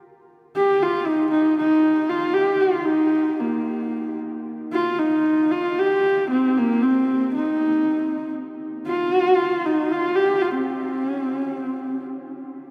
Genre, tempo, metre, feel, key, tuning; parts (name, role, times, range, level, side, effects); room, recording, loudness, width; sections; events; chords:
mongolian traditional; free time; A4 = 440 Hz
dark horsehead fiddle; melody; 0.6-12.0 s; Bb3 to G4; -22 LUFS; equal
wet cathedral reverb, RT60 6.1 s; recorded in a church or concert hall; -21 LUFS; mono
0.0-4.5 A section; 4.5-12.7 B section